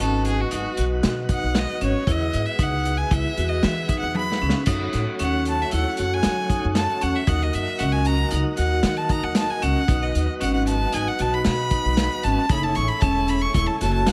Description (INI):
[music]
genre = progressive instrumental, band music in an uneven meter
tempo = 115 BPM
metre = 5/4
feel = straight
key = F# dorian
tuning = A4 = 440 Hz
[part]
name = clear violin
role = melody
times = 0.0-14.1 s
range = F#4 to C#6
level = -28 LUFS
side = equal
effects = digital delay
[part]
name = tonewheel organ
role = accompaniment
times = 0.0-14.1 s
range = F#3 to G#4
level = -33 LUFS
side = equal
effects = fast rotary speaker
[part]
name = vibraphone with hard mallets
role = arpeggios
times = 0.0-14.1 s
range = C#4 to F#4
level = -30 LUFS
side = equal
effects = digital delay
[part]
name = upright bass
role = bass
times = 0.0-14.1 s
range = E1 to F#3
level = -27 LUFS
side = equal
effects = none
[part]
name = vintage drum kit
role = drums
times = 0.2-14.1 s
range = crash cymbal, hi-hat, kick drum, snare drum, toms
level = -27 LUFS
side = equal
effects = none
[sound]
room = light reverb, studio reverb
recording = none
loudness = -22 LUFS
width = mono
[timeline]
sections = 0.0-14.1 A section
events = violin solo 0.0-14.1; drum fill 4.2-4.7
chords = 0.0 B; 2.1 Eadd9; 4.7 F#m; 7.3 D#m; 9.9 B; 12.5 F#m7